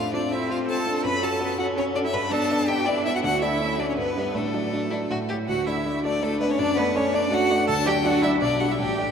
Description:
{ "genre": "quick classical-period movement for piano quartet", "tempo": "164 BPM", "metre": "3/4", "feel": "straight", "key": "D major", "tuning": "A4 = 441 Hz", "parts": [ { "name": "clear violin", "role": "melody", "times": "0.0-9.1 s", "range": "A4 to B5", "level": "-28 LUFS", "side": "left 4 dB", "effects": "none" }, { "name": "rich violin", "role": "second line", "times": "0.0-9.1 s", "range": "B3 to G4", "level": "-29 LUFS", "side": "left 2 dB", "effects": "none" }, { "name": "dark concert grand piano", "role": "accompaniment", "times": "0.0-9.1 s", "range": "A1 to D5", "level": "-26 LUFS", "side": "equal", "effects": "none" }, { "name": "rich cello", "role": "second line", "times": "0.1-9.1 s", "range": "A3 to B4", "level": "-27 LUFS", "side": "right 5 dB", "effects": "none" } ], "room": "wet cathedral reverb, RT60 5.2 s", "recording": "in a vast, echoing space", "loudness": "-21 LUFS", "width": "side -7 dB against mid", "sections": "0.0-5.5 A section; 5.5-9.1 B section", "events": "none", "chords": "0.0 F/A; 1.0 F#m; 2.1 G; 3.2 D5; 4.0 G; 4.4 D/A; 5.1 A; 5.5 D5; 6.6 D/F#; 7.7 D; 8.4 G/B" }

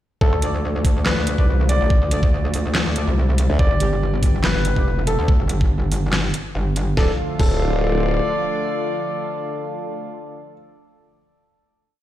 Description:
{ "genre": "heavy wobble dubstep", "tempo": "142 BPM", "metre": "4/4", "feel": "swing 54% on 16ths, half-time", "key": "D dorian", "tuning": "A4 = 440 Hz", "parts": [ { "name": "warm concert grand piano", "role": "melody", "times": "0.2-10.5 s", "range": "A4 to D5", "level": "-28 LUFS", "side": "left 1 dB", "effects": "tape echo" }, { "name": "lush unison pad", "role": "sustained chords", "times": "0.2-10.1 s", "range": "D3 to G4", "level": "-27 LUFS", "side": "equal", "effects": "chorus, sidechain pumping" }, { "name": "formant-sweep wobble bass", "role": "bass", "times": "0.2-0.3, 3.5-3.7, 7.0-8.2 s", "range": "D1 to D2", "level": "-20 LUFS", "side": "equal", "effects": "chorus, overdrive" }, { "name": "electronic kick drum", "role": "drums", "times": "0.2-7.5 s", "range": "none", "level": "-18 LUFS", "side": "equal", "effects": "none" }, { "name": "metallic wobble bass", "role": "bass", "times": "0.3-7.0 s", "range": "F1 to D2", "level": "-20 LUFS", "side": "equal", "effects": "chorus, overdrive" }, { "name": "mellow brass ensemble", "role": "stabs", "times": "0.4-10.5 s", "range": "G3 to D5", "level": "-28 LUFS", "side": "left 2 dB", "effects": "tape echo" }, { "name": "dubstep drum kit", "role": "drums", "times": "0.4-7.5 s", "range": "crash cymbal, handclaps, hi-hat, snare drum", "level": "-25 LUFS", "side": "left 1 dB", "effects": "none" } ], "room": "digital ambience", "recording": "played on a big sound system in a bare room, large studio reverb", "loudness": "-17 LUFS", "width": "side -13 dB against mid", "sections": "0.2-7.0 drop; 7.0-10.4 final chord", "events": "drop 0.2-7.0", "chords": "0.2 Dm; 3.6 G; 7.0 Dm" }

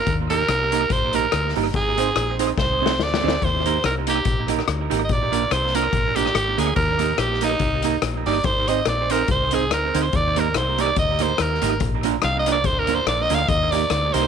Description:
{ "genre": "ska", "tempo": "143 BPM", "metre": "4/4", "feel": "swing 56% on 8ths", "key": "Eb major", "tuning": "A4 = 440 Hz", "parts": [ { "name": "raspy alto saxophone", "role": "melody", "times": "0.0-14.3 s", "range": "Eb4 to F5", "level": "-22 LUFS", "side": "right 2 dB", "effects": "none" }, { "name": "deep dub fingered electric bass", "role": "bass", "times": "0.1-14.3 s", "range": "G1 to Eb2", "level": "-26 LUFS", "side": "left 1 dB", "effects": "tube saturation" }, { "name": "vintage drum kit", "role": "drums", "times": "0.1-14.2 s", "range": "hi-hat, kick drum, rim click, snare drum", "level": "-25 LUFS", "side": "left 5 dB", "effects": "tape echo" }, { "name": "vintage hollow-body jazz guitar", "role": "accompaniment", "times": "0.3-14.2 s", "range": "Bb3 to C5", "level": "-25 LUFS", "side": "right 13 dB", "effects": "tape echo" } ], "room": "light reverb, small room ambience", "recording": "1960s-style stereo", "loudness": "-18 LUFS", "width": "side -7 dB against mid", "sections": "0.0-14.3 A section", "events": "alto saxophone solo 0.0-14.3; drum fill 2.6-3.4", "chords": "0.1 Eb; 1.7 Ab; 3.4 Eb; 5.1 Bb; 6.8 Eb; 8.5 Ab; 10.1 Eb; 11.8 Bb; 13.5 Eb" }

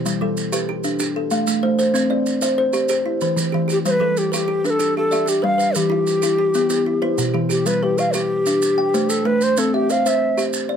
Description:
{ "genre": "southern african traditional, mbira-style interlocking cycle", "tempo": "126 BPM (dotted quarters)", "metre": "12/8", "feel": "straight", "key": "G mixolydian", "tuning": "A4 = 440 Hz", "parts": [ { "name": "kalimba", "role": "arpeggios", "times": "0.0-10.8 s", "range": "E3 to G5", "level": "-21 LUFS", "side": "left 1 dB", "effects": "none" }, { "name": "kalimba", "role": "arpeggios", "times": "0.0-7.8 s", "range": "B2 to E5", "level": "-24 LUFS", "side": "right 3 dB", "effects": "none" }, { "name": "maracas", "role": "percussion", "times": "0.1-10.7 s", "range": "none", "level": "-28 LUFS", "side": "right 5 dB", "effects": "none" }, { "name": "mellow Native American-style cedar flute", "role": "melody", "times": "3.7-10.4 s", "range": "G4 to F5", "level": "-19 LUFS", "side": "left 1 dB", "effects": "none" } ], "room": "light reverb", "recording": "none", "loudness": "-17 LUFS", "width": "side -8 dB against mid", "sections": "0.0-7.7 A section; 7.7-10.8 B section", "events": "none", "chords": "0.1 G; 1.0 Am; 2.0 C; 2.9 Em; 3.8 G; 5.8 Em; 7.7 G; 8.6 Am; 9.6 C" }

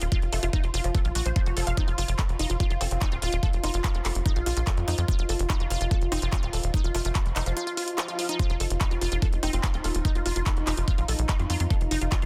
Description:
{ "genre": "psychedelic trance", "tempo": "145 BPM", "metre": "4/4", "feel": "straight", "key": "unclear", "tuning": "A4 = 440 Hz", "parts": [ { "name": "evolving wavetable pad", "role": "sustained chords", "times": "0.0-12.3 s", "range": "Eb4 to F4", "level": "-39 LUFS", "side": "equal", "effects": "chorus, built-in reverb, sidechain pumping" }, { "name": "unison pluck", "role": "riff", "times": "0.0-12.3 s", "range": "Eb4 to F5", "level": "-35 LUFS", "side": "equal", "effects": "sidechain pumping, digital delay" }, { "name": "tight sequencer bass", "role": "bass", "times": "0.0-12.3 s", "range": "Eb1 to F2", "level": "-30 LUFS", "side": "equal", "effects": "none" }, { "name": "techno drum kit", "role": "drums", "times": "0.0-12.3 s", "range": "handclaps, hi-hat", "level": "-36 LUFS", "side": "equal", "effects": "none" }, { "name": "warbly tape-like pad", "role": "texture", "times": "0.0-12.3 s", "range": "F4 to F5", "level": "-45 LUFS", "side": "equal", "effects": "none" }, { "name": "electronic kick drum", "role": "drums", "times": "0.1-12.2 s", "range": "none", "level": "-27 LUFS", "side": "equal", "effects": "none" }, { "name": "metallic wobble bass", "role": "second line", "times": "0.3-10.4 s", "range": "F3 to F4", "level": "-42 LUFS", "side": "equal", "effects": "ensemble chorus, sidechain pumping, high-pass filter, dub echo" }, { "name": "swell", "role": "sound effects", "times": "7.8-8.4 s", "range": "none", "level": "-40 LUFS", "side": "equal", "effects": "none" } ], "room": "digital ambience", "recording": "dense, heavily limited modern master", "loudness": "-26 LUFS", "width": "mono", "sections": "0.0-12.3 A section", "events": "swell 7.8-8.4", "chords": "0.0 F5" }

